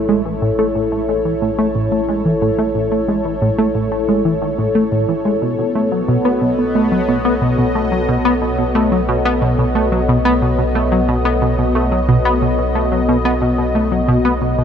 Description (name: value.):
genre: ambient, sequencer-driven space music.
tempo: 90 BPM.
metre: 4/4.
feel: straight.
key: unclear.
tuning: A4 = 440 Hz.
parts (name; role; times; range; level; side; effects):
sweeping resonant pad; sustained chords; 0.0-14.6 s; B3 to D#5; -18 LUFS; left 1 dB; chorus.
warm sub bass; bass; 0.0-14.6 s; A1 to B1; -24 LUFS; equal; none.
tight sequenced synth; riff; 0.1-14.6 s; A2 to B3; -17 LUFS; equal; chorus, analog delay.
room: moderate huge ambient reverb, RT60 8.6 s.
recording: none.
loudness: -14 LUFS.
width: side -8 dB against mid.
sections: 0.0-14.6 A section.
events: fade-in on sub bass 0.0-14.6.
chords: 0.0 A; 5.4 B7.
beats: | 0.09 0.75 1.42 2.09 | 2.75 3.42 4.09 4.75 | 5.42 6.09 6.75 7.42 | 8.09 8.75 9.42 10.09 | 10.75 11.42 12.09 12.75 | 13.42 14.09.